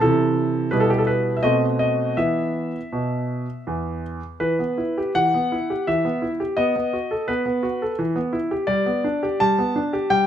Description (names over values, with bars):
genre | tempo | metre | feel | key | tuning
classical-period piano sonatina | 78-87 BPM | 3/4 | rubato | E minor | A4 = 440 Hz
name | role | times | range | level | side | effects
clear baby grand piano | solo | 0.0-10.3 s | E2 to A5 | -20 LUFS | equal | none
room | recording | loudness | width
light reverb | close, detailed microphones | -20 LUFS | side -10 dB against mid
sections
0.0-4.4 A section; 4.4-10.3 B section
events
none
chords
0.0 Am/C; 0.7 Em/B; 1.4 B7b9; 2.2 E5; 4.4 Em; 6.6 B7; 8.0 Em; 8.7 G